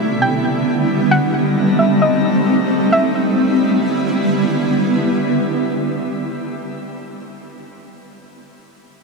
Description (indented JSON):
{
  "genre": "hip hop",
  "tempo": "133 BPM",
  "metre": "4/4",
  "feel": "half-time",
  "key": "E minor",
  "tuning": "A4 = 441 Hz",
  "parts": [
    { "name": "shimmering ambient pad", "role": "sustained chords", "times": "0.0-6.5 s", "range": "D3 to E4", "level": "-16 LUFS", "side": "equal", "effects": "chorus, built-in reverb" },
    { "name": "drifting glass-harmonics texture", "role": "texture", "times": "0.0-6.5 s", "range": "B2 to E5", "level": "-28 LUFS", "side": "right 1 dB", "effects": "chorus, built-in reverb" },
    { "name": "soft round pluck", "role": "melody", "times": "0.2-4.2 s", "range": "D#5 to G5", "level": "-22 LUFS", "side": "equal", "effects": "chorus, tape echo" }
  ],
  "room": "wet shimmer reverb, RT60 6.2 s",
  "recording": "none",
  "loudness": "-14 LUFS",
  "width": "side -3 dB against mid",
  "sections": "0.0-2.9 A section; 2.9-6.5 B section",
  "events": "none",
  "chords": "0.0 Em7; 1.1 B7b9b13; 2.9 Em7"
}